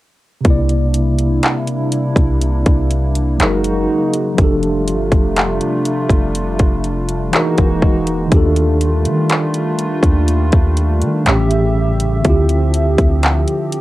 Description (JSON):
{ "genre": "contemporary R&B", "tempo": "61 BPM", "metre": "4/4", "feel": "straight", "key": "unclear", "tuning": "A4 = 442 Hz", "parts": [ { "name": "mellow tine electric piano", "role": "accompaniment", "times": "0.4-13.8 s", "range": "A2 to D5", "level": "-19 LUFS", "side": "equal", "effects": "medium stereo tremolo, cassette tape" }, { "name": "hollow soft pad", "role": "sustained chords", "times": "0.4-13.8 s", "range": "C3 to E5", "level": "-20 LUFS", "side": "equal", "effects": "chorus, cassette tape" }, { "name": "trap drum kit", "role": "drums", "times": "0.4-13.8 s", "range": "handclaps, hi-hat, kick drum", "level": "-15 LUFS", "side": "equal", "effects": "none" }, { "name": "warm 808-style bass", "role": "bass", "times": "0.5-13.5 s", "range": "E1 to Eb3", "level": "-17 LUFS", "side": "equal", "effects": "none" } ], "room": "light reverb", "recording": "home recording on cassette", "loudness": "-13 LUFS", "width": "side -16 dB against mid", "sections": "0.4-13.8 A section", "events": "none", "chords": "0.4 C9; 3.4 Gb69; 4.4 F69; 7.3 Emaj9#11; 8.3 Ebmaj9#11; 11.3 A7; 12.3 Dm11" }